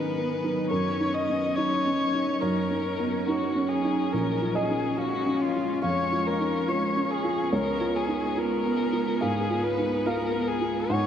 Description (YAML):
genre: neoclassical piano and strings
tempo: 71 BPM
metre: 4/4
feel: rubato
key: unclear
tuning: A4 = 440 Hz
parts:
  - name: muted violin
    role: melody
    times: 0.0-11.1 s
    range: E#4 to D#5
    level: -28 LUFS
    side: left 3 dB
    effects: none
  - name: muted cello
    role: second line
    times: 0.0-11.1 s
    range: B3 to D#4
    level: -32 LUFS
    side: right 1 dB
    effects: none
  - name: felt-muted upright piano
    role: accompaniment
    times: 0.0-11.1 s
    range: A#1 to F#5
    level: -28 LUFS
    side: right 1 dB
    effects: none
  - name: ethereal airy pad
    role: sustained chords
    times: 0.0-11.1 s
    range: F#3 to E#5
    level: -34 LUFS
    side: right 1 dB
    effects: ensemble chorus, built-in reverb
room: wet huge ambient reverb, RT60 7.8 s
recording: in a vast, echoing space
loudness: -24 LUFS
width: side -9 dB against mid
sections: 0.0-11.1 A section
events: none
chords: 0.0 G#m7; 0.7 D#m7/F#; 4.1 A#m7; 7.5 C#7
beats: | 0.71 1.56 2.42 3.27 | 4.13 4.97 5.82 6.67 | 7.52 8.36 9.21 10.06 | 10.90